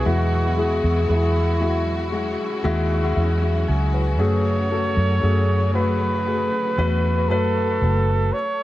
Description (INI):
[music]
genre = pop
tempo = 58 BPM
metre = 4/4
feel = straight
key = unclear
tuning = A4 = 445 Hz
[part]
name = warm flugelhorn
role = melody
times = 0.0-8.6 s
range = E4 to C#5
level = -25 LUFS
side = right 2 dB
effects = tape echo
[part]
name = warm concert grand piano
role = accompaniment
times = 0.0-8.4 s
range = B2 to G#5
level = -24 LUFS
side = left 3 dB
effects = tape echo
[part]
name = warm symphonic string section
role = sustained chords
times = 0.0-8.3 s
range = C#3 to F#4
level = -30 LUFS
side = right 1 dB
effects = none
[part]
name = vintage muted fingered electric bass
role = bass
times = 0.0-8.3 s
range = F#1 to F#2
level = -21 LUFS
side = equal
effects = none
[sound]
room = light reverb, studio reverb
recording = echo-heavy mix, nothing above 10.4 kHz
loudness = -18 LUFS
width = side -15 dB against mid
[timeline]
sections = 0.0-8.6 A section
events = grand piano fill 2.6-4.2; stop 8.3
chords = 0.1 Eadd9; 4.2 F#madd9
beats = | 0.06 1.09 2.13 3.16 | 4.20 5.23 6.27 7.30 | 8.34